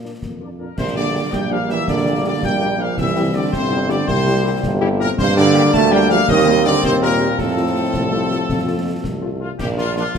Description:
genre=military-style march for wind band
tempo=109 BPM (dotted quarters)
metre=6/8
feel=straight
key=unclear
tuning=A4 = 442 Hz
part: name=clear trumpet section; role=melody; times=0.0-10.2 s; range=F4 to A5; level=-22 LUFS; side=left 3 dB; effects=none
part: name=warm French horn section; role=accompaniment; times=0.0-10.0 s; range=G3 to Bb4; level=-26 LUFS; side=left 5 dB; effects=none
part: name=dark trombone section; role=sustained chords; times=0.0-10.0 s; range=F3 to D4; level=-23 LUFS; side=equal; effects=none
part: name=clear tuba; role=bass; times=0.0-10.2 s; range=G1 to Bb2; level=-21 LUFS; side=right 2 dB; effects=none
part: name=concert snare drum, concert bass drum and clash cymbals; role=drums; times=0.2-10.2 s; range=none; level=-27 LUFS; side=left 2 dB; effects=none
part: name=mellow euphonium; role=second line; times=0.6-9.4 s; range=A2 to A3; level=-21 LUFS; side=right 4 dB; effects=none
room=wet concert hall reverb, RT60 2.0 s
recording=none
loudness=-15 LUFS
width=side -6 dB against mid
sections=0.8-9.6 A section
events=none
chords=0.0 Bb; 0.8 Gm/Bb; 3.0 C; 5.2 Gm; 6.3 Cm7/Eb; 7.4 F; 9.6 Bb

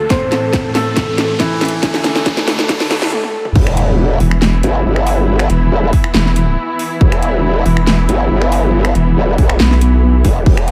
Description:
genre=heavy wobble dubstep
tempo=139 BPM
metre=4/4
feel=half-time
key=E minor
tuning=A4 = 440 Hz
part: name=warm studio string section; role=sustained chords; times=0.0-10.7 s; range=D2 to A4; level=-22 LUFS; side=equal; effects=sidechain pumping
part: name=riser and impact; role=sound effects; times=0.0-5.3 s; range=none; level=-26 LUFS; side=equal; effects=none
part: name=felt-muted upright piano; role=melody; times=0.1-3.1 s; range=E3 to C5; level=-23 LUFS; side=equal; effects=diffuse ambient delay
part: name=dubstep drum kit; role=drums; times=0.1-10.7 s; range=crash cymbal, finger snaps, hi-hat, snare drum, toms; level=-20 LUFS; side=equal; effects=none
part: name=electronic kick drum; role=drums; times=0.1-10.6 s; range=none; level=-16 LUFS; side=equal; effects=none
part: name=growl bass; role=bass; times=3.6-10.7 s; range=E1 to B1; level=-16 LUFS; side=equal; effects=chorus, overdrive
part: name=vowel-sweep wobble bass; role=bass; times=4.2-10.2 s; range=E1 to B1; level=-14 LUFS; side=equal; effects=chorus, overdrive
room=light reverb, digital ambience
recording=high-pass filter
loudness=-14 LUFS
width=mono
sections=0.0-3.6 A section; 3.6-10.7 B section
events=build-up 0.0-3.6; drum fill 0.0-3.1, 3.1-3.6; riser 0.0-3.1; filter sweep 0.0-3.6; break 3.1-3.6; drop 3.6-10.7; impact 3.6-5.3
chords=0.1 Am; 1.8 D5; 3.6 E5

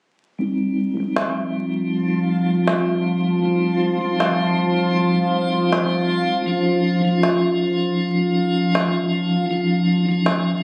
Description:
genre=trip hop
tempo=79 BPM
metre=4/4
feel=swing 57% on 16ths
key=C phrygian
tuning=A4 = 444 Hz
part: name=tonewheel organ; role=accompaniment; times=0.4-10.6 s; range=F3 to Eb4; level=-23 LUFS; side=equal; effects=slow rotary speaker, tremolo, low-pass filter, tape echo
part: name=deep dark ambient pad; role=sustained chords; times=1.4-10.6 s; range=F3 to F4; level=-24 LUFS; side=equal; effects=chorus, built-in reverb, vintage 12-bit sampler grit
part: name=backwards swelling texture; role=texture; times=0.4-10.6 s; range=F3 to F4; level=-29 LUFS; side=equal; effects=built-in reverb
part: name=darbuka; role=percussion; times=1.2-10.4 s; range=none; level=-25 LUFS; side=equal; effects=none
room=moderate spring reverb, RT60 1.5 s, digital ambience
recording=recorded on a phone in the room, club reverb, vinyl crackle, compression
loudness=-20 LUFS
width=mono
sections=0.4-10.6 A section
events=filter sweep on tonewheel organ 0.4-10.6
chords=0.4 Cm; 6.5 Dbadd9

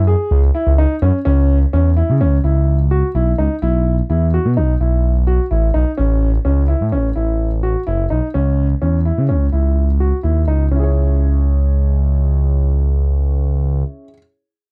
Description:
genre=progressive instrumental, progressive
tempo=127 BPM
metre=5/4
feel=straight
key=C# minor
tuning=A4 = 439 Hz
part: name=smooth gliding synth bass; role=bass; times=0.0-13.8 s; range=F#1 to C#3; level=-16 LUFS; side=equal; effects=none
part: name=warm concert grand piano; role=arpeggios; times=0.1-14.2 s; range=C#4 to C#5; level=-24 LUFS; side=equal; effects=none
room=little or no reverb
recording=dry, close 1970s-style studio recording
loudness=-16 LUFS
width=mono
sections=0.0-1.3 A section; 1.3-10.7 B section; 10.7-13.1 C section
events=none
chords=0.0 C#m; 1.3 C#m7; 3.6 B7sus4; 6.0 A; 8.3 C#m

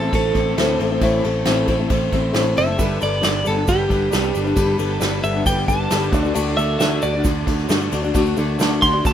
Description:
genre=folk rock and heartland rock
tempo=135 BPM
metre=4/4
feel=straight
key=unclear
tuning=A4 = 442 Hz
part: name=twelve-string electric guitar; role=melody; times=0.0-9.1 s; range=G4 to C6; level=-22 LUFS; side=right 1 dB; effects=wide subtle chorus
part: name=bright grand piano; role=accompaniment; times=0.0-9.1 s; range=E4 to D5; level=-36 LUFS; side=right 4 dB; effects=none
part: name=picked steel-string acoustic guitar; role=accompaniment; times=0.0-9.1 s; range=A2 to D5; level=-22 LUFS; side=left 4 dB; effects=none
part: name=overdriven electric guitar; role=riff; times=0.0-9.1 s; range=A2 to A4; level=-28 LUFS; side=right 4 dB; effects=tremolo
part: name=picked electric bass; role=bass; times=0.0-9.1 s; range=F#1 to G2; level=-23 LUFS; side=right 1 dB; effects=none
part: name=soft brush drum kit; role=drums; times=0.1-9.1 s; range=kick drum, ride cymbal, snare drum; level=-23 LUFS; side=equal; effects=none
part: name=tonewheel organ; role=sustained chords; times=2.8-9.1 s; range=D4 to B4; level=-35 LUFS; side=right 2 dB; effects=none
part: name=tube shaker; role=percussion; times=2.8-9.1 s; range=none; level=-36 LUFS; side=right 14 dB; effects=none
room=small room ambience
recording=rough home demo mix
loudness=-16 LUFS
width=side -10 dB against mid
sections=0.0-9.1 A section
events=clean electric guitar solo 0.0-9.1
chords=0.0 Am; 2.8 Gadd9; 6.1 D

